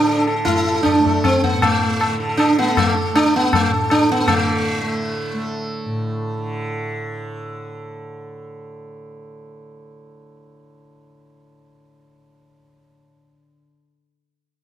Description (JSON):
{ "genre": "indian classical, Hindustani", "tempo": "158 BPM", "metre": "7/4", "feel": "straight", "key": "unclear", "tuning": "A4 = 441 Hz", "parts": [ { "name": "sitar", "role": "melody", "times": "0.0-8.0 s", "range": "A3 to A4", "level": "-17 LUFS", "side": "right 1 dB", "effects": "none" }, { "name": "tanpura", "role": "drone", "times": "0.0-13.5 s", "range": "A2 to A3", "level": "-27 LUFS", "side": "right 1 dB", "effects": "none" }, { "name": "tabla", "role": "percussion", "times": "0.1-4.4 s", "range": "none", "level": "-21 LUFS", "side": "left 4 dB", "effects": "none" } ], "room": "moderate recital hall reverb, RT60 1.4 s", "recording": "close, detailed microphones", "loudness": "-16 LUFS", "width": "side -11 dB against mid", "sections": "0.0-4.3 A section; 4.3-6.9 B section", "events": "none", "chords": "none" }